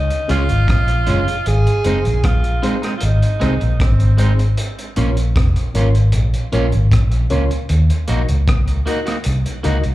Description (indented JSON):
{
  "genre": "roots reggae",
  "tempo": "77 BPM",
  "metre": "4/4",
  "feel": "straight",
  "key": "unclear",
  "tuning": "A4 = 439 Hz",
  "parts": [
    { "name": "warm tenor saxophone", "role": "melody", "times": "0.0-4.4 s", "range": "C4 to Ab4", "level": "-22 LUFS", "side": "right 2 dB", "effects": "tape echo, slapback echo" },
    { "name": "vintage muted fingered electric bass", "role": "bass", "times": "0.0-9.9 s", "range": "F1 to Eb2", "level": "-15 LUFS", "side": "equal", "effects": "none" },
    { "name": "crunchy breakbeat drum kit", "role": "drums", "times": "0.1-9.9 s", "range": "hi-hat, kick drum, rim click", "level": "-22 LUFS", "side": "equal", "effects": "none" },
    { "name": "electric guitar at the edge of break-up", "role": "accompaniment", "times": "0.3-9.9 s", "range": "Ab3 to Gb4", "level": "-25 LUFS", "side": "right 4 dB", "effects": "tape echo, slapback echo" },
    { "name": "reed electric piano", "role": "stabs", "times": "0.3-9.8 s", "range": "C4 to Eb5", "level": "-25 LUFS", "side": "left 4 dB", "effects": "fast tremolo, slapback echo" }
  ],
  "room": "studio ambience",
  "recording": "live gig heard through the venue's PA, club reverb",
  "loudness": "-14 LUFS",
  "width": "side -16 dB against mid",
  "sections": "0.0-9.9 A section",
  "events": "none",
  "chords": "0.0 Db; 1.5 Ab; 4.6 Bbm; 7.7 Ebm"
}